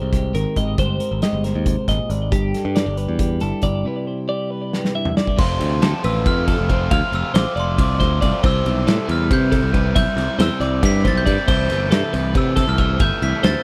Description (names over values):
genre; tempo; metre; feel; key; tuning
math rock and midwest emo; 276 BPM (eighths); 7/8; straight; C major; A4 = 440 Hz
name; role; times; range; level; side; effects
clean electric guitar; accompaniment; 0.0-5.4 s; G2 to D5; -28 LUFS; equal; none
twelve-string electric guitar; arpeggios; 0.0-13.6 s; G4 to F5; -28 LUFS; equal; tape echo
modern bright picked electric bass; bass; 0.0-13.5 s; F1 to C3; -23 LUFS; equal; none
loose indie drum kit; drums; 0.1-13.5 s; crash cymbal, hi-hat, kick drum, ride cymbal, snare drum, toms; -23 LUFS; equal; none
glockenspiel with hard plastic mallets; melody; 5.4-13.6 s; C6 to B6; -28 LUFS; equal; none
crunchy overdriven guitar; riff; 5.4-13.6 s; F2 to F4; -28 LUFS; equal; none
room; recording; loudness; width
little or no reverb; none; -19 LUFS; mono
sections
0.0-5.4 A section; 5.4-13.6 B section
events
drum fill 4.7-5.4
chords
0.0 Abmaj9; 2.3 G69; 3.9 Cmaj9; 5.4 F6; 8.4 Cmaj7; 11.5 Am7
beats
0.13 0.35 0.57 | 0.79 1.00 1.22 1.44 1.66 1.88 2.10 | 2.32 2.54 2.76 2.98 3.20 3.42 3.63 | 3.85 4.07 4.29 4.51 4.73 4.95 5.17 | 5.38 5.60 5.82 6.04 6.26 6.47 6.69 | 6.91 7.13 7.34 7.56 7.78 8.00 8.21 | 8.43 8.65 8.87 9.09 9.30 9.52 9.74 | 9.96 10.17 10.39 10.61 10.83 11.04 11.26 | 11.48 11.70 11.91 12.13 12.35 12.57 12.78 | 13.00 13.22 13.44